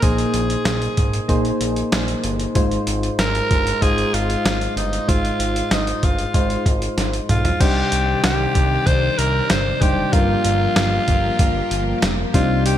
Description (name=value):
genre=1980s-style pop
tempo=95 BPM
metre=4/4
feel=straight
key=F dorian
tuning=A4 = 440 Hz
part: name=raspy alto saxophone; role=melody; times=0.0-12.8 s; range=Eb4 to C5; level=-22 LUFS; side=equal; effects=digital delay
part: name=soft electric-piano-like synth keys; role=accompaniment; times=0.0-12.8 s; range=G2 to C5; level=-23 LUFS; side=left 1 dB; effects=chorus
part: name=fat analog bass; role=bass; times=0.0-12.8 s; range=F1 to C2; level=-23 LUFS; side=equal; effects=none
part: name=boom bap sampler-style drum kit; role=drums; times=0.0-12.8 s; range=crash cymbal, hi-hat, kick drum, snare drum, toms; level=-20 LUFS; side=equal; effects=none
part: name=string machine, violins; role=sustained chords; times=7.6-12.8 s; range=C3 to D5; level=-26 LUFS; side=equal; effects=ensemble chorus
room=moderate lush hall reverb, RT60 2.2 s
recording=bright 1980s-style digital production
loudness=-16 LUFS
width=side -11 dB against mid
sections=0.0-7.6 A section; 7.6-12.8 B section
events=drum fill 7.0-7.6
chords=0.0 Bb9sus4; 2.6 Fm7; 7.6 Cmadd9; 10.1 Gm7